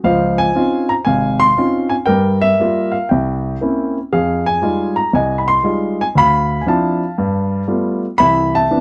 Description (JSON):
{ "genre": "solo jazz", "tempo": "118 BPM", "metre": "4/4", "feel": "swing 68% on 8ths", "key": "unclear", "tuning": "A4 = 440 Hz", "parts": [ { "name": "warm grand piano", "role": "solo", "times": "0.0-8.8 s", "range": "Ab1 to C6", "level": "-16 LUFS", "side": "equal", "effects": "none" } ], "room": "light reverb", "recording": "dry, close 1970s-style studio recording", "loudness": "-16 LUFS", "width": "mono", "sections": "0.0-8.8 A section", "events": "none", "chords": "0.0 Dbmaj9; 2.1 Gm7; 3.1 C7b9; 4.1 Fm9; 6.1 Dm9; 7.2 G9; 8.2 Cmaj9" }